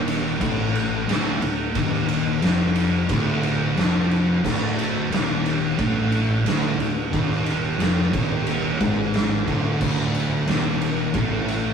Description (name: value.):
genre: stoner and doom metal.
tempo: 89 BPM.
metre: 4/4.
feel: straight.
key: unclear.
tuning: A4 = 442 Hz.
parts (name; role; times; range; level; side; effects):
sludgy distorted guitar; riff; 0.0-11.7 s; D2 to A2; -30 LUFS; equal; none.
thick fuzz guitar; riff; 0.0-11.7 s; D2 to A2; -25 LUFS; left 5 dB; distortion.
thick fuzz guitar; riff; 0.0-11.7 s; D2 to A2; -27 LUFS; right 6 dB; distortion.
modern bright fingered electric bass; bass; 0.0-11.7 s; D1 to A1; -31 LUFS; right 1 dB; overdrive.
oversized low-tuned drum kit; drums; 0.1-11.6 s; crash cymbal, kick drum, ride cymbal, snare drum; -24 LUFS; right 1 dB; none.
room: moderate stone room reverb, RT60 0.9 s.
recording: rough rehearsal-room recording.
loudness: -19 LUFS.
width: side -7 dB against mid.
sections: 0.0-11.7 A section.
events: none.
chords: 0.0 Dm.